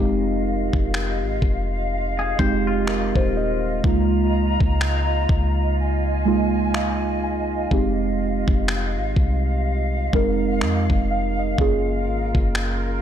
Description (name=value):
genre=contemporary R&B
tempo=62 BPM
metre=4/4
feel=swing 58% on 16ths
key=F minor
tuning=A4 = 440 Hz
part: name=muted felt-like synth keys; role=accompaniment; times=0.0-13.0 s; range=Ab3 to Ab5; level=-23 LUFS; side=right 2 dB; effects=chorus, phaser
part: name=large flute ensemble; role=sustained chords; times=0.0-13.0 s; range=F4 to Bb5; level=-28 LUFS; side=equal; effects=sidechain pumping
part: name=warm 808-style bass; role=bass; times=0.0-13.0 s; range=Eb1 to F2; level=-24 LUFS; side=equal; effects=none
part: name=dusty soul sampler-style drum kit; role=drums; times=0.7-12.8 s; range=finger snaps, kick drum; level=-22 LUFS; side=equal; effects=none
part: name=twangy electric guitar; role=arpeggios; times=2.2-3.8 s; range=F4 to C5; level=-30 LUFS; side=left 4 dB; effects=ping-pong delay
room=light reverb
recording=dark, warm production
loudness=-19 LUFS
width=side -9 dB against mid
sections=0.0-13.0 A section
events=break 0.0-13.0; synth keys fill 6.3-7.7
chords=0.0 Fm7; 3.8 Db69; 7.7 Fm7; 11.6 Gbmaj9